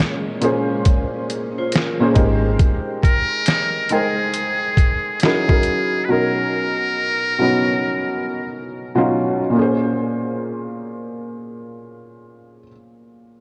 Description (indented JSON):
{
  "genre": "lo-fi hip hop",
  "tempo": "69 BPM",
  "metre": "4/4",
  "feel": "swing 66% on 16ths",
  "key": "unclear",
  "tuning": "A4 = 442 Hz",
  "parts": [
    { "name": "felt-muted upright piano", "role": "accompaniment", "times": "0.0-13.4 s", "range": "Bb2 to G5", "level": "-23 LUFS", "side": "equal", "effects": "cassette tape, low-pass filter" },
    { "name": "string machine, violins", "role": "sustained chords", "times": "0.0-2.6 s", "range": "Ab3 to G4", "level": "-33 LUFS", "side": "equal", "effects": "ensemble chorus, low-pass filter" },
    { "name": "trip hop sampler-style drum kit", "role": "drums", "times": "0.0-5.9 s", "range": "hi-hat, kick drum, snare drum", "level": "-20 LUFS", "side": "equal", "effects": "vintage 12-bit sampler grit" },
    { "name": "vibraphone with hard mallets", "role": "second line", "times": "1.6-2.4 s", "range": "Db4 to C5", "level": "-29 LUFS", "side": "equal", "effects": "low-pass filter, tape echo" },
    { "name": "deep dub fingered electric bass", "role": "bass", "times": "2.2-2.6 s", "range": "Ab1", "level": "-21 LUFS", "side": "equal", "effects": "none" },
    { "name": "trumpet with metal mute", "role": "melody", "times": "3.0-8.7 s", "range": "Ab4 to Cb5", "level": "-23 LUFS", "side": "equal", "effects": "low-pass filter" }
  ],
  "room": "moderate plate reverb, RT60 2.9 s",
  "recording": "dreamy mix soaked in reverb, cassette tape",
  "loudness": "-19 LUFS",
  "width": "mono",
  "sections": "0.0-9.6 A section; 9.6-13.0 B section",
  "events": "none",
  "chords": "0.0 Bbm9; 2.2 Abmaj9; 5.2 Gb13; 6.1 Bmaj7; 9.6 Bbm9",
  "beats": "0.85 1.72 | 2.59 3.46 4.33 5.20 | 6.07 6.94 7.81 8.68 | 9.55 10.42 11.29 12.16"
}